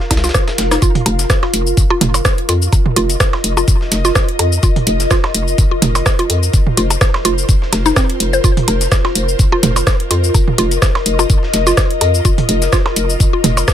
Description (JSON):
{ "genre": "minimal techno", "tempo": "126 BPM", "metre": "4/4", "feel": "swing 55% on 16ths", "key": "unclear", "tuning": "A4 = 441 Hz", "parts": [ { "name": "dusty soul sampler-style drum kit", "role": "drums", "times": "0.0-13.7 s", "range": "hi-hat, snare drum, tambourine", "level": "-27 LUFS", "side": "equal", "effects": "high-pass filter on perc, high-pass filter on snare, high-pass filter on hats" }, { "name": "ethereal airy pad", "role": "texture", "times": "0.0-13.7 s", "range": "F4 to F5", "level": "-21 LUFS", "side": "left 2 dB", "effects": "ensemble chorus, built-in reverb, sidechain pumping" }, { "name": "hollow knocking FM bass", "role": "bass", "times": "0.1-13.6 s", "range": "F1 to F2", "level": "-16 LUFS", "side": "equal", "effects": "sidechain pumping" }, { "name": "booming analog drum machine", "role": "drums", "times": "0.1-13.7 s", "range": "hi-hat, rim click, shaker", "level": "-18 LUFS", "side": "equal", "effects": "none" }, { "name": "electronic kick drum", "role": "drums", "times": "0.1-13.7 s", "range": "none", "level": "-14 LUFS", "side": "equal", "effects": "none" }, { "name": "electronic percussion blips and toms", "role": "percussion", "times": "0.1-13.7 s", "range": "none", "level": "-19 LUFS", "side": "right 5 dB", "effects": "overdrive, dub echo" }, { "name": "mallet-like synth pluck", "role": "riff", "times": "0.2-13.4 s", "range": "C4 to C5", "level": "-20 LUFS", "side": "equal", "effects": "chorus, sidechain pumping, dub echo" } ], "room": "light reverb", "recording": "none", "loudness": "-11 LUFS", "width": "side -10 dB against mid", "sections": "0.8-13.7 A section", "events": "drop 0.8-13.7", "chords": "0.0 F5" }